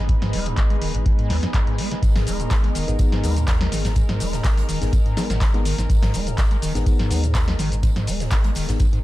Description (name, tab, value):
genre	acid house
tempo	124 BPM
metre	4/4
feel	swing 54% on 16ths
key	G# minor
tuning	A4 = 437 Hz
part	lush unison pad	sustained chords	0.0-9.0 s	G#3 to B4	-32 LUFS	equal	chorus, sidechain pumping
part	saturated sub bass	bass	0.0-8.8 s	D#1 to D#2	-24 LUFS	equal	tube saturation, sidechain pumping
part	ethereal airy pad	texture	0.0-9.0 s	B3 to G#5	-35 LUFS	equal	ensemble chorus, built-in reverb, sidechain pumping
part	acid bass, square	riff	0.1-9.0 s	F#2 to G#3	-27 LUFS	equal	overdrive, lush chorus, sidechain pumping, ping-pong delay
part	electro analog drum machine	drums	0.1-9.0 s	handclaps, hi-hat, shaker, snare drum	-28 LUFS	left 1 dB	none
part	electronic kick drum	drums	0.1-8.9 s	none	-20 LUFS	equal	none
part	big rock drum kit	drums	2.0-8.9 s	hi-hat, snare drum, tambourine	-39 LUFS	right 2 dB	sidechain pumping on hats, high-pass filter on hats, high-pass filter on snare, sidechain pumping on perc, high-pass filter on perc, high-pass filter on room
part	tine electric piano	stabs	2.9-8.8 s	B3 to G#4	-31 LUFS	left 6 dB	medium tremolo, ping-pong delay
room	small room ambience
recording	dark, warm production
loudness	-18 LUFS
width	side -16 dB against mid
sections	0.0-9.0 A section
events	none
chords	0.0 G#m